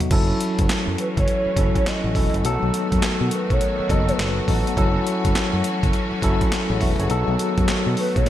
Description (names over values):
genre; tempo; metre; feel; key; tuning
R&B, new jack swing; 103 BPM; 4/4; swing 64% on 16ths; F# dorian; A4 = 440 Hz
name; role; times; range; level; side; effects
tine electric piano; accompaniment; 0.0-8.3 s; F#3 to E5; -23 LUFS; left 2 dB; fast stereo tremolo
breakbeat sampler-style drum kit; drums; 0.0-8.3 s; crash cymbal, handclaps, hi-hat, kick drum, snare drum, toms; -23 LUFS; equal; gated reverb
clear symphonic string section; sustained chords; 0.1-8.3 s; D#3 to F#4; -29 LUFS; equal; none
fingered electric bass; bass; 0.1-8.3 s; E1 to B2; -24 LUFS; equal; none
hollow clarinet-like synth lead; melody; 1.0-4.5, 8.0-8.3 s; B4 to D#5; -27 LUFS; right 1 dB; chorus
room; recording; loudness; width
moderate lush hall reverb, RT60 2.1 s; bright 1980s-style digital production; -18 LUFS; side -12 dB against mid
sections
0.1-8.3 A section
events
none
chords
0.1 F#m7; 2.4 B7; 4.8 F#m7; 7.1 B7